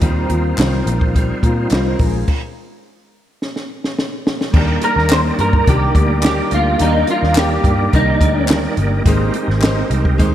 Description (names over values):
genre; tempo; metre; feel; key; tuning
indie pop, bedroom pop; 106 BPM; 4/4; straight; Eb major from 4.5 s; A4 = 440 Hz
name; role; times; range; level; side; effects
bright tonewheel organ; accompaniment; 0.0-10.3 s; G3 to D5; -22 LUFS; right 4 dB; chorus vibrato, fast rotary speaker, cassette tape
fingerpicked steel-string acoustic guitar; accompaniment; 0.0-10.3 s; Eb3 to C5; -22 LUFS; left 2 dB; wide subtle chorus, vibrato effect
vintage muted picked electric bass; bass; 0.0-10.3 s; G1 to Bb2; -18 LUFS; equal; none
compact cocktail drum kit; drums; 0.0-10.3 s; crash cymbal, hi-hat, kick drum, snare drum; -18 LUFS; equal; none
group handclap; percussion; 0.6-9.8 s; none; -28 LUFS; left 5 dB; none
electric guitar through a small old amp; melody; 4.8-8.5 s; Eb4 to C5; -18 LUFS; equal; ensemble chorus, analog delay
room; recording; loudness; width
moderate lush hall reverb, RT60 1.8 s, studio reverb; dreamy mix soaked in reverb; -13 LUFS; side -11 dB against mid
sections
0.0-4.5 A section; 4.5-10.3 B section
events
stop 2.3-4.5; drum fill 3.4-4.5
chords
0.0 Eb69; 2.0 Bbm7; 4.5 Ebmaj7; 9.1 Abmaj9